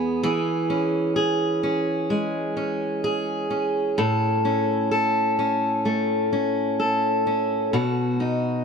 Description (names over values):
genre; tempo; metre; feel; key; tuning
pop; 64 BPM; 4/4; straight; C# minor; A4 = 441 Hz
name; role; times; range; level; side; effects
fingerpicked steel-string acoustic guitar; solo; 0.0-8.6 s; E2 to A4; -21 LUFS; equal; ping-pong delay
room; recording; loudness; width
moderate lush hall reverb, RT60 2.7 s; none; -21 LUFS; side -6 dB against mid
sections
0.0-8.6 A section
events
none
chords
0.2 C#m/E; 4.0 A; 7.7 B